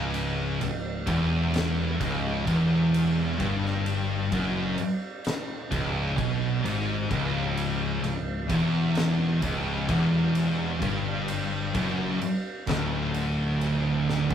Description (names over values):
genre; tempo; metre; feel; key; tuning
stoner and doom metal; 65 BPM; 4/4; straight; unclear; A4 = 439 Hz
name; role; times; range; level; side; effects
heavy high-gain guitar; riff; 0.0-14.3 s; C#2 to B2; -32 LUFS; left 1 dB; distortion
thick fuzz guitar; riff; 0.0-14.3 s; C#2 to B2; -29 LUFS; left 4 dB; distortion
thick fuzz guitar; riff; 0.0-14.3 s; C#2 to B2; -29 LUFS; right 3 dB; distortion
fingered electric bass; bass; 0.0-14.3 s; C#1 to B1; -33 LUFS; left 1 dB; overdrive
oversized low-tuned drum kit; drums; 0.1-14.3 s; kick drum, ride cymbal, snare drum, toms; -33 LUFS; equal; none
room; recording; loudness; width
moderate studio reverb, RT60 0.5 s; rough rehearsal-room recording; -24 LUFS; side -9 dB against mid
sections
0.0-14.3 A section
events
drum fill 14.1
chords
0.0 C#m